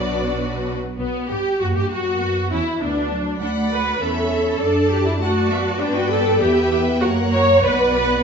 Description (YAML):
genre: quick classical-period movement for string orchestra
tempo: 99 BPM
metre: 2/4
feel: straight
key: B minor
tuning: A4 = 440 Hz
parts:
  - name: clear symphonic violin section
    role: melody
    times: 0.0-8.2 s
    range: B3 to B5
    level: -30 LUFS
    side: left 5 dB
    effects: none
  - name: clear symphonic violin section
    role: second line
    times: 0.0-8.2 s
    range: B3 to F#5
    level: -26 LUFS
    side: left 3 dB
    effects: none
  - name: rich symphonic viola section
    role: accompaniment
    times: 0.0-8.2 s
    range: F#3 to C#5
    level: -20 LUFS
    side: equal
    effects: none
  - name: rich symphonic cello section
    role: bass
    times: 0.0-8.2 s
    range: B2 to D4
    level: -25 LUFS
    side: right 2 dB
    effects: none
  - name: rich symphonic double bass section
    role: bass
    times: 0.0-8.2 s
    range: B1 to G2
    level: -25 LUFS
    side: right 2 dB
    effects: none
room: wet recital hall reverb, RT60 1.3 s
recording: nothing above 7.8 kHz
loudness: -17 LUFS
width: side -6 dB against mid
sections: 1.0-8.2 A section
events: none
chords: 0.0 Bm; 1.0 G/B; 1.6 F#; 2.2 Bm; 3.4 D; 4.0 A/E; 4.6 D/F#; 5.8 G; 6.4 Em; 7.0 F#; 7.6 Bm